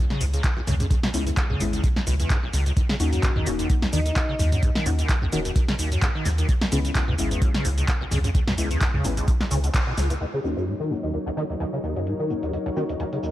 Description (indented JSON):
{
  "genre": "acid house",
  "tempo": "129 BPM",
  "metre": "4/4",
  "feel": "swing 55% on 16ths",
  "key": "Eb phrygian",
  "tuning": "A4 = 441 Hz",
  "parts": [
    { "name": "liquid acid bass", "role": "riff", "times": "0.0-13.3 s", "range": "Cb2 to Eb3", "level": "-28 LUFS", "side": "equal", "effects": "overdrive, ensemble chorus, sidechain pumping, dub echo" },
    { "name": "electro analog drum machine", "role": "drums", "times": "0.1-13.3 s", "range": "handclaps, hi-hat, shaker, snare drum, toms", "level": "-28 LUFS", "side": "equal", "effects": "low-pass filter on hats, low-pass filter on perc, low-pass filter on snare, low-pass filter on toms" },
    { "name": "warm sub bass", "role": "bass", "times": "0.2-10.1 s", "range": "Eb1 to Eb2", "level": "-25 LUFS", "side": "equal", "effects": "tube saturation, sidechain pumping" },
    { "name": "electronic kick drum", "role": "drums", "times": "0.4-9.8 s", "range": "none", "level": "-23 LUFS", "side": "equal", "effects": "overdrive" },
    { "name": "deep mellow chord stab", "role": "stabs", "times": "1.1-12.8 s", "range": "Ab3 to Gb4", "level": "-32 LUFS", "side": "left 4 dB", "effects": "chorus, dub echo" },
    { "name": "breathy alto saxophone", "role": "melody", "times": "3.9-4.6 s", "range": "Eb4", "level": "-32 LUFS", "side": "equal", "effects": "analog delay" },
    { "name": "warm analog pad", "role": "sustained chords", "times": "10.2-13.3 s", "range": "Gb3 to Db5", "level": "-33 LUFS", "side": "right 1 dB", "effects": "lush chorus, sidechain pumping" },
    { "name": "deep dark ambient pad", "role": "texture", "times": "11.7-13.3 s", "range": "Eb4 to Gb5", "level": "-34 LUFS", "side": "left 3 dB", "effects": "chorus, built-in reverb, sidechain pumping" }
  ],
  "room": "light reverb",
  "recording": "echo-heavy mix",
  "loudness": "-21 LUFS",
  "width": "side -14 dB against mid",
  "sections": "0.0-10.2 A section; 10.2-13.3 B section",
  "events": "drop 0.0-10.2; band accent 9.7; filter sweep on drum 10.2-13.3; filter sweep on acid bass 10.2-13.3",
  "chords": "0.0 Dbm7; 2.8 Ebm7; 6.5 Dbm7; 10.2 Ebm7",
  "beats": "0.44 | 0.91 1.37 1.84 2.30 | 2.77 3.23 3.70 4.16 | 4.63 5.09 5.56 6.02 | 6.49 6.95 7.42 7.88 | 8.35 8.81 9.28 9.74 | 10.21 10.67 11.14 11.60 | 12.07 12.53 13.00"
}